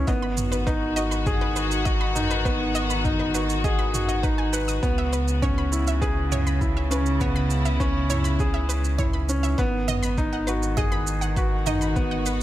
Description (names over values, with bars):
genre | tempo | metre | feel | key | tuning
piano and strings electronica | 101 BPM | 4/4 | straight | C# minor | A4 = 439 Hz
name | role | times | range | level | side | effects
warm studio string section | sustained chords | 0.0-12.4 s | C#3 to F#4 | -29 LUFS | left 1 dB | none
felt-muted upright piano | riff | 0.0-12.4 s | B3 to B4 | -27 LUFS | equal | ping-pong delay
warm sub bass | bass | 0.0-12.4 s | G#1 to C#2 | -26 LUFS | equal | tube saturation, sidechain pumping
analog pluck | arpeggios | 0.1-12.3 s | B4 to D#6 | -33 LUFS | right 2 dB | chorus, sidechain pumping, ping-pong delay
electronic kick drum | drums | 0.1-12.1 s | none | -26 LUFS | equal | overdrive
electronic shaker and toms | drums | 0.1-12.4 s | none | -32 LUFS | right 2 dB | overdrive
room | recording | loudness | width
light reverb | none | -21 LUFS | side -13 dB against mid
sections
0.0-12.4 A section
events
none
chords
0.1 G#m7; 4.8 C#m7; 9.6 G#m7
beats
| 0.08 0.67 1.27 1.86 | 2.46 3.05 3.64 4.24 | 4.83 5.43 6.02 6.61 | 7.21 7.80 8.40 8.99 | 9.59 10.18 10.77 11.37 | 11.96